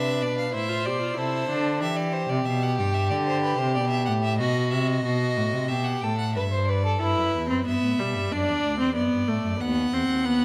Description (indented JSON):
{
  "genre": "classical, baroque-style fugue for string quartet",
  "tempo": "93 BPM",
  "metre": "4/4",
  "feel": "straight",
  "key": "E minor from 7.0 s",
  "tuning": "A4 = 440 Hz",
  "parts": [
    { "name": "clear violin", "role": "melody", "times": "0.0-10.4 s", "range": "B4 to G5", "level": "-33 LUFS", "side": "equal", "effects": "none" },
    { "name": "warm violin", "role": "second line", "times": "0.0-7.0 s", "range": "F#4 to C5", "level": "-31 LUFS", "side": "equal", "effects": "none" },
    { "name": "rich viola", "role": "accompaniment", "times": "0.0-1.8, 7.0-10.4 s", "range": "G3 to G4", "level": "-28 LUFS", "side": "equal", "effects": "none" },
    { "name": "warm cello", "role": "bass", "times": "0.0-10.4 s", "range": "D2 to E3", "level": "-29 LUFS", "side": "equal", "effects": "none" }
  ],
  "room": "moderate recital hall reverb, RT60 1.4 s",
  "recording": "none",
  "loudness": "-25 LUFS",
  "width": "mono",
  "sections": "0.0-7.0 A section; 7.0-10.4 B section",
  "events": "none",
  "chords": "0.0 E5; 0.5 Am; 1.8 Em; 3.1 D5; 4.4 B7; 5.7 Em; 8.3 D; 9.6 B/D#",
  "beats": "0.54 1.18 | 1.82 2.46 3.11 3.75 | 4.40 5.05 5.70 6.35 | 7.01 7.67 8.32 8.96 | 9.61 10.26"
}